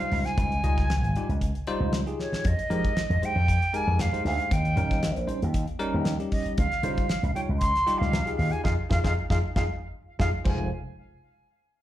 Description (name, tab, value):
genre	electric jazz fusion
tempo	116 BPM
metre	4/4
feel	swing 54% on 16ths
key	F minor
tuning	A4 = 440 Hz
part	silver concert flute	melody	0.0-10.7 s	Db5 to C6	-29 LUFS	right 1 dB	plate reverb, slapback echo
part	bell-like tine electric piano	accompaniment	0.0-10.7 s	G3 to Eb5	-32 LUFS	left 1 dB	medium stereo tremolo, plate reverb, slapback echo
part	slap bass with an envelope filter	bass	0.0-10.7 s	F1 to F3	-26 LUFS	equal	none
part	damped 70s drum kit	drums	0.0-10.6 s	crash cymbal, hi-hat, kick drum, snare drum	-29 LUFS	equal	none
room	light reverb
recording	live gig heard through the venue's PA, club reverb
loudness	-23 LUFS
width	side -13 dB against mid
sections	0.0-10.7 A section; 10.7-11.8 B section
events	drum fill 2.2, 9.7-10.7; band accent 8.7-10.7; tine electric piano fill 9.2-10.7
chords	0.0 Dbmaj9#11; 2.4 Fm11; 4.5 Eb7; 6.6 Dbmaj9#11; 8.7 Fm7; 10.7 N.C.